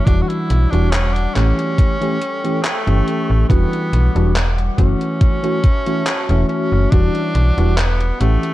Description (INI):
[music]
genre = vaporwave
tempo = 70 BPM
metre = 4/4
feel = straight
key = E dorian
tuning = A4 = 440 Hz
[part]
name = edgy tenor saxophone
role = melody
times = 0.0-8.5 s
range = A3 to F#4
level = -24 LUFS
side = equal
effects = tape echo
[part]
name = tine electric piano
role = accompaniment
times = 0.0-8.5 s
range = E3 to G4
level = -20 LUFS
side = equal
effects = overdrive, wide subtle chorus, vintage 12-bit sampler grit
[part]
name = warbly tape-like pad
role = sustained chords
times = 0.0-8.5 s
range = G3 to D6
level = -30 LUFS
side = left 1 dB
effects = chorus, built-in reverb, phaser
[part]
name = slap-like FM bass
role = bass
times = 0.1-8.4 s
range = E1 to B1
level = -15 LUFS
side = equal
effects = none
[part]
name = electronic kick drum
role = drums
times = 0.1-7.1 s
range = none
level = -14 LUFS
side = equal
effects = overdrive
[part]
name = gated 80s digital drum machine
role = drums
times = 0.1-8.5 s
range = handclaps, hi-hat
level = -25 LUFS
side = equal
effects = gated reverb, overdrive
[sound]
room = digital ambience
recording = cassette tape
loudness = -14 LUFS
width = side -16 dB against mid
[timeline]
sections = 0.0-8.5 A section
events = none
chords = 0.1 Em9; 1.4 A7; 3.5 Em9; 4.8 F#m7; 6.9 Em9